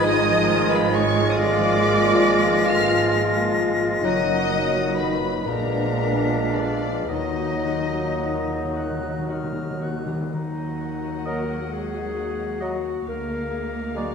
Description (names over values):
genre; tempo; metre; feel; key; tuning
classical, slow romantic movement for symphony orchestra; 35-47 BPM (dotted quarters); 6/8; rubato; Eb minor; A4 = 441 Hz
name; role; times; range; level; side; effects
muted chamber violin section; melody; 0.0-14.1 s; D5 to F6; -29 LUFS; equal; none
bright concert flute; second line; 0.0-14.1 s; Bb5 to Cb7; -30 LUFS; left 3 dB; none
muted chamber violin section; second line; 0.0-14.1 s; D4 to Gb5; -30 LUFS; left 3 dB; none
warm clarinet; second line; 0.0-14.1 s; D4 to Bb4; -31 LUFS; left 2 dB; none
warm oboe; second line; 0.0-14.1 s; D5 to Gb5; -34 LUFS; right 1 dB; none
clear bassoon; accompaniment; 0.0-14.1 s; Gb3 to Ab3; -27 LUFS; equal; none
muted chamber viola section; accompaniment; 0.0-14.1 s; D3 to F4; -30 LUFS; equal; none
mellow French horn section; sustained chords; 0.0-14.1 s; Gb3 to F4; -30 LUFS; left 2 dB; none
mellow trombone section; sustained chords; 0.0-9.9 s; Bb2 to Ab3; -31 LUFS; right 4 dB; none
concert harp; arpeggios; 0.0-14.1 s; Gb2 to D5; -32 LUFS; left 9 dB; none
muted chamber cello section; bass; 0.0-14.1 s; Eb2 to Bb3; -30 LUFS; right 5 dB; none
muted studio double bass section; bass; 0.0-14.1 s; Gb1 to Eb2; -33 LUFS; right 5 dB; none
timpani; percussion; 7.1-11.7 s; Eb3; -32 LUFS; equal; none
room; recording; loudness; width
wet scoring stage reverb, RT60 1.5 s; none; -20 LUFS; side -6 dB against mid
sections
0.0-10.3 A section; 10.3-14.1 B section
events
timpani fill 7.1-10.3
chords
0.0 Fm7b5/Ab; 1.4 Bb7/Ab; 4.0 Ebm/Gb; 5.5 Bb7b9; 7.1 Ebm; 13.1 Bb7/D